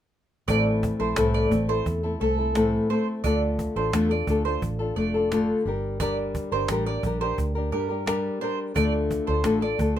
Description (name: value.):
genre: acoustic pop.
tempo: 87 BPM.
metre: 4/4.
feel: straight.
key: D minor.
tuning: A4 = 439 Hz.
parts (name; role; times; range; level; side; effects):
nylon-string guitar; accompaniment; 0.5-10.0 s; A2 to Bb4; -24 LUFS; left 2 dB; none.
mandolin; arpeggios; 0.5-10.0 s; A4 to D5; -30 LUFS; right 7 dB; none.
vintage muted fingered electric bass; bass; 0.5-10.0 s; F1 to G2; -28 LUFS; right 1 dB; none.
cajon; drums; 0.5-10.0 s; none; -32 LUFS; right 1 dB; none.
room: moderate small room reverb, RT60 0.5 s.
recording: minimal, uncompressed stereo recording.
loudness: -22 LUFS.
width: side -11 dB against mid.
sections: 0.5-10.0 A section.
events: none.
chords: 0.5 Am; 3.2 Dm; 5.7 Gm; 8.8 Dm.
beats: | 0.48 1.17 1.86 2.55 | 3.24 3.93 4.62 5.31 | 6.00 6.69 7.38 8.07 | 8.76 9.45.